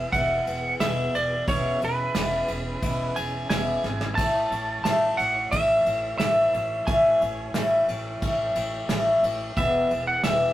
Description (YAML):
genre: folk rock and heartland rock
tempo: 89 BPM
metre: 4/4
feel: straight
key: A major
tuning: A4 = 442 Hz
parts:
  - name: lightly driven lead guitar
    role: melody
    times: 0.0-10.5 s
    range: B4 to A5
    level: -26 LUFS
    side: right 1 dB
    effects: none
  - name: picked twelve-string acoustic guitar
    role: accompaniment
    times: 0.0-10.5 s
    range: E2 to E4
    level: -25 LUFS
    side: left 1 dB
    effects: none
  - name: tonewheel organ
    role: sustained chords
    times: 0.0-10.5 s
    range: E3 to C#5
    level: -39 LUFS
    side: right 1 dB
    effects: slow rotary speaker, chorus vibrato
  - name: upright bass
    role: bass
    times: 0.0-10.5 s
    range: E1 to A1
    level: -34 LUFS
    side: right 1 dB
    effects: none
  - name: soft brush drum kit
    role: drums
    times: 0.1-10.4 s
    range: crash cymbal, kick drum, ride cymbal, snare drum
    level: -30 LUFS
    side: right 1 dB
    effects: none
room: wet small room reverb, RT60 0.5 s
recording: rough rehearsal-room recording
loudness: -22 LUFS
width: side -14 dB against mid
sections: 0.0-10.5 A section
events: drum fill 3.8-4.2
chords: 0.0 E; 4.2 A; 9.6 E